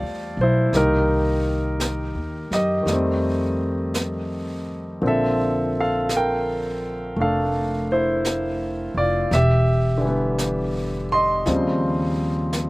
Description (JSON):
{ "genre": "jazz", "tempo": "56 BPM", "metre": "4/4", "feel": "swing 66% on 8ths", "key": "unclear", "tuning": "A4 = 440 Hz", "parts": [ { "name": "clear concert grand piano", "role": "accompaniment", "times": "0.0-12.7 s", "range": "Db3 to C6", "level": "-21 LUFS", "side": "equal", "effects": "slapback echo" }, { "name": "upright bass", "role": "bass", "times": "0.0-12.7 s", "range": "E1 to F#2", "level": "-24 LUFS", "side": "equal", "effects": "none" }, { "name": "jazz brush drum kit", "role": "drums", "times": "0.7-12.7 s", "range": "brushed snare drum, hi-hat, snare drum", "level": "-31 LUFS", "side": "equal", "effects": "none" } ], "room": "little or no reverb", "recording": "recorded outdoors, with no room sound", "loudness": "-19 LUFS", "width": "side -21 dB against mid", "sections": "0.0-12.7 A section", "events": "none", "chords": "0.0 Fmaj9; 0.7 Cm7; 2.9 F9; 5.0 Bbmaj9; 9.3 Em7; 11.5 Eb13", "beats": "| 0.74 1.81 2.88 3.95 | 5.03 6.10 7.17 8.24 | 9.31 10.38 11.46 12.53" }